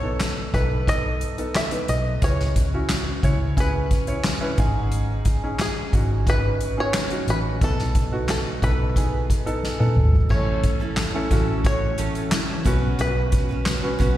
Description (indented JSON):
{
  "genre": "piano-driven pop",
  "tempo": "89 BPM",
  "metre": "4/4",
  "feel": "straight",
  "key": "unclear",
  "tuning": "A4 = 440 Hz",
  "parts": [
    { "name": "bluegrass banjo", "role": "melody", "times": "0.0-14.2 s", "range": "G#4 to E5", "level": "-29 LUFS", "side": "equal", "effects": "slapback echo, ping-pong delay" },
    { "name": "clear concert grand piano", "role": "accompaniment", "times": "0.0-14.2 s", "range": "G#2 to C#5", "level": "-28 LUFS", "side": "equal", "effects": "slapback echo" },
    { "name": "vintage muted fingered electric bass", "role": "bass", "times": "0.0-14.2 s", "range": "G#1 to C#2", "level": "-25 LUFS", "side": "equal", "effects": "none" },
    { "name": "soft-mallet drum kit", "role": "drums", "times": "0.2-14.2 s", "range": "crash cymbal, handclaps, hi-hat, kick drum, snare drum, toms", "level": "-23 LUFS", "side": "equal", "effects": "none" },
    { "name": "picked steel-string acoustic guitar", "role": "riff", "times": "10.3-14.2 s", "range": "A2 to B4", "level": "-30 LUFS", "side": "right 6 dB", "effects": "slapback echo" }
  ],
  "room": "light reverb, small room ambience",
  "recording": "live gig heard through the venue's PA, recital hall reverb",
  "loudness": "-20 LUFS",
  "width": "side -13 dB against mid",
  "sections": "0.0-10.3 A section; 10.3-14.2 B section",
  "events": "drum fill 9.6-10.3",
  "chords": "0.0 B7; 2.2 C#m7; 4.6 G#sus4; 7.6 B7; 10.3 A; 12.7 Bsus2"
}